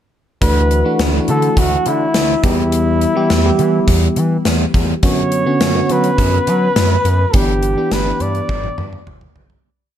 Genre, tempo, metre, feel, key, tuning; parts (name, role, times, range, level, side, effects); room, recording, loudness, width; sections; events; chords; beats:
1980s-style pop; 104 BPM; 4/4; straight; D major; A4 = 437 Hz
warm flugelhorn; melody; 0.4-9.1 s; E4 to D5; -19 LUFS; left 1 dB; diffuse ambient delay
FM electric piano; accompaniment; 0.4-9.7 s; D3 to G4; -18 LUFS; equal; chorus
smooth gliding synth bass; bass; 0.4-9.6 s; G1 to F#3; -18 LUFS; equal
gated 80s drum kit; drums; 0.4-9.6 s; hi-hat, kick drum, snare drum, toms; -18 LUFS; equal
moderate plate reverb, RT60 1.8 s, studio ambience; dreamy mix soaked in reverb; -13 LUFS; side -10 dB against mid
0.4-9.6 verse
fade-out 7.3-9.6; drum fill 8.5-9.6
0.4 Dadd9; 2.4 Em; 5.0 Bmadd9/F#; 7.3 G6
| 0.42 0.99 1.57 2.15 | 2.72 3.30 3.88 4.46 | 5.03 5.61 6.18 6.76 | 7.34 7.92 8.49 9.07